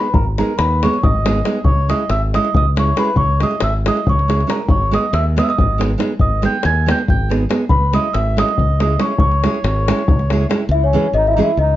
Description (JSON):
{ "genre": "balkan folk, Balkan wedding band", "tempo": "278 BPM (eighths)", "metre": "7/8", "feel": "straight", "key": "C# dorian sharp4", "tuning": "A4 = 442 Hz", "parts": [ { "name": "celesta", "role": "melody", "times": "0.0-11.8 s", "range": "C#5 to G#6", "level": "-20 LUFS", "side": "equal", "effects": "none" }, { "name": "mellow accordion", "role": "second line", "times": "0.0-11.8 s", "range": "C#4 to G#5", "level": "-25 LUFS", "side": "right 1 dB", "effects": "none" }, { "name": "nylon-string guitar", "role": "accompaniment", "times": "0.0-11.5 s", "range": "E3 to G#4", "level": "-20 LUFS", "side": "right 3 dB", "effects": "none" }, { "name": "modern bright fingered electric bass", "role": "bass", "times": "0.1-11.8 s", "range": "G#1 to D#2", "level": "-17 LUFS", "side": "equal", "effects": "none" }, { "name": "davul", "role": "percussion", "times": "0.1-10.6 s", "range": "none", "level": "-19 LUFS", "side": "left 2 dB", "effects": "none" } ], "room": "moderate studio reverb, RT60 0.6 s", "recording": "dark, warm production, nothing above 7.6 kHz", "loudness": "-14 LUFS", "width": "side -14 dB against mid", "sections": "0.0-10.7 A section; 10.7-11.8 B section", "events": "none", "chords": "0.0 G#m; 1.7 C#m; 4.7 G#m; 7.7 C#m", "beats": "| 0.14 0.36 0.57 0.79 1.00 1.22 1.44 | 1.65 1.87 2.09 2.30 2.52 2.73 2.95 | 3.17 3.38 3.60 3.81 4.03 4.25 4.46 | 4.68 4.89 5.11 5.32 5.54 5.76 5.97 | 6.19 6.40 6.62 6.83 7.05 7.26 7.48 | 7.70 7.91 8.13 8.34 8.56 8.77 8.98 | 9.20 9.41 9.63 9.84 10.05 10.27 10.48 | 10.69 10.90 11.12 11.33 11.54 11.75" }